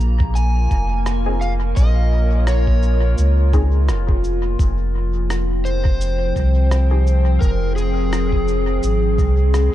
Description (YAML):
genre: ambient dub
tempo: 85 BPM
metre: 4/4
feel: swing 56% on 16ths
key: F minor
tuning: A4 = 442 Hz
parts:
  - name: warbly tape-like pad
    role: sustained chords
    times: 0.0-9.7 s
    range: F3 to G5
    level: -24 LUFS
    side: left 1 dB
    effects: chorus, built-in reverb
  - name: soft dub sub bass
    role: bass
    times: 0.0-9.7 s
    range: F1 to Db2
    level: -17 LUFS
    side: equal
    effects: none
  - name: electronic cabasa and rim click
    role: drums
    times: 0.0-9.7 s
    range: none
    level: -34 LUFS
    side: equal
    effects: dub echo
  - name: electronic kick drum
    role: drums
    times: 0.2-9.3 s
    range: none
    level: -18 LUFS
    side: equal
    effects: none
  - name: overdriven slide guitar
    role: melody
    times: 0.4-9.7 s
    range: Ab4 to Ab5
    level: -26 LUFS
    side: equal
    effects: dub echo
  - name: filtered dub chord stab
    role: stabs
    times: 1.3-7.1 s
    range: C4 to Ab4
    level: -32 LUFS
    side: left 4 dB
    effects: phaser, lush chorus, dub echo
room: little or no reverb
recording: dark, warm production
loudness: -15 LUFS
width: side -13 dB against mid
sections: 0.0-9.7 A section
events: band accent 9.5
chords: 0.0 Bbm7; 4.6 Fmadd9